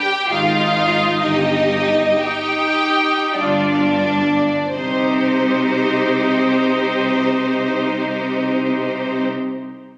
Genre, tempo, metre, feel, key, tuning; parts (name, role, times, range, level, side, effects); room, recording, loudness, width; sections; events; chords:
classical, slow romantic movement for symphony orchestra; 41-65 BPM; 3/4; rubato; C minor; A4 = 440 Hz
warm studio violin section; melody; 0.0-9.3 s; C5 to G5; -25 LUFS; equal
rich chamber violin section; second line; 0.0-9.2 s; D4 to C5; -23 LUFS; equal
rich chamber viola section; accompaniment; 0.0-9.2 s; Eb4 to G4; -24 LUFS; equal
bright chamber cello section; bass; 0.3-9.2 s; G2 to C3; -23 LUFS; equal
clear chamber double bass section; bass; 0.3-9.2 s; G1 to C2; -32 LUFS; equal
moderate scoring stage reverb, RT60 2.0 s; recorded on a phone in the room, studio reverb; -18 LUFS; mono
0.0-4.7 A section; 4.7-8.5 B section
slowing down 0.0-4.7
0.3 Ab5; 1.2 G5; 4.7 Cm